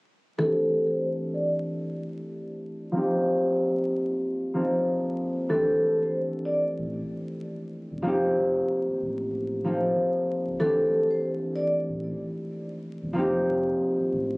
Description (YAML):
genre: hip hop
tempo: 94 BPM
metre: 4/4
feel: swing 54% on 16ths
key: unclear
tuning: A4 = 440 Hz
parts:
  - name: vibraphone with soft mallets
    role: melody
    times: 0.4-1.5, 5.5-6.6, 10.6-11.7 s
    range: A4 to D5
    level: -26 LUFS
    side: equal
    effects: low-pass filter, tape echo
  - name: concert harp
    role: accompaniment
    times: 0.4-14.4 s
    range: E3 to A4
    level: -26 LUFS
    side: equal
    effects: cassette tape, low-pass filter
  - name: sub bass with octave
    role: bass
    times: 5.5-14.4 s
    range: C#1 to A1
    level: -38 LUFS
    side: equal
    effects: none
room: light reverb, small room reverb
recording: recorded on a phone in the room, club reverb, vinyl crackle, compression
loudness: -24 LUFS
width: side -27 dB against mid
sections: 0.4-10.6 A section; 10.6-14.4 B section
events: none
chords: 0.4 D9sus4; 3.0 F9sus4; 5.5 D9sus4; 8.1 F9sus4; 10.6 D9sus4; 13.2 F9sus4